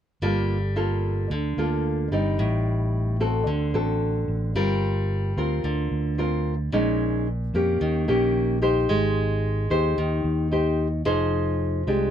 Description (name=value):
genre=bossa nova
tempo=111 BPM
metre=4/4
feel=straight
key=G minor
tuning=A4 = 442 Hz
part: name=nylon-string guitar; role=accompaniment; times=0.2-12.1 s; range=A2 to C5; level=-24 LUFS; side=equal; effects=none
part: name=fingered electric bass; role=bass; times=0.2-12.1 s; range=F1 to F2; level=-25 LUFS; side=equal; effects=none
room=light reverb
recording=none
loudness=-22 LUFS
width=side -9 dB against mid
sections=0.2-4.6 A section; 4.6-12.1 B section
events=none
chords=0.2 Gm9; 2.4 Am7b5; 3.5 D7; 4.6 Gm7; 6.7 Bbm7; 7.8 Eb7; 8.9 Abmaj7; 11.1 Fm7